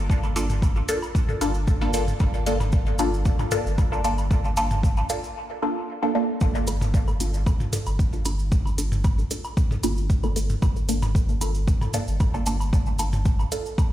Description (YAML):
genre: dub techno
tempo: 114 BPM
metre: 4/4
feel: straight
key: G minor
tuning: A4 = 441 Hz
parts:
  - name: warm sub bass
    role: bass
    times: 0.0-13.5 s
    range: G1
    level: -26 LUFS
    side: equal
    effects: sidechain pumping
  - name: electronic kick drum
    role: drums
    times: 0.1-13.9 s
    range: none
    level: -22 LUFS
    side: equal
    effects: small room reverb
  - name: cabasa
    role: percussion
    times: 0.1-13.9 s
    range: none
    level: -38 LUFS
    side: right 4 dB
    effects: none
  - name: electronic woodblock and toms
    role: percussion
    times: 0.2-13.9 s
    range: none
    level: -32 LUFS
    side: equal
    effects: overdrive, sidechain pumping on perc, small room reverb, sidechain pumping on toms, dub echo
  - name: filtered dub chord stab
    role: stabs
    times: 0.4-13.6 s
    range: Bb3 to A4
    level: -27 LUFS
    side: equal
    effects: phaser, sidechain pumping, dub echo
  - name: electronic hi-hat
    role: drums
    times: 0.4-13.6 s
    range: none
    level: -34 LUFS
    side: left 1 dB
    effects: small room reverb
room: digital ambience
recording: played on a big sound system in a bare room, stone room reverb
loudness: -21 LUFS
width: side -13 dB against mid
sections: 0.0-6.4 A section; 6.4-13.9 A section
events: break 5.4-6.4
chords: 0.0 Gm7